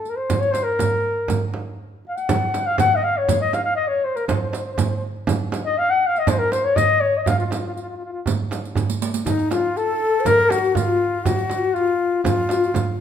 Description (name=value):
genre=Arabic maqam ensemble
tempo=120 BPM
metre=4/4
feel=straight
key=F maqam hijaz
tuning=A4 = 443 Hz
part: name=mellow flugelhorn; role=melody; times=0.0-13.0 s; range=Eb4 to Gb5+28c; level=-20 LUFS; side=left 3 dB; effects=none
part: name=darbuka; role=percussion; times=0.1-12.9 s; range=none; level=-26 LUFS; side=right 4 dB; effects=none
part: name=riq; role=percussion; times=0.1-12.9 s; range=none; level=-32 LUFS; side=right 7 dB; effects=none
part: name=frame drum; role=percussion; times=0.3-12.9 s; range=none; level=-26 LUFS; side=right 4 dB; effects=none
part: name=breathy mellow ney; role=second line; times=9.3-13.0 s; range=Eb4 to C5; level=-23 LUFS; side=left 4 dB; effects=none
room=moderate recital hall reverb, RT60 1.5 s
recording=minimal, uncompressed stereo recording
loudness=-18 LUFS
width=side -9 dB against mid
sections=0.0-9.3 A section; 9.3-13.0 B section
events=drum fill 8.8-9.3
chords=none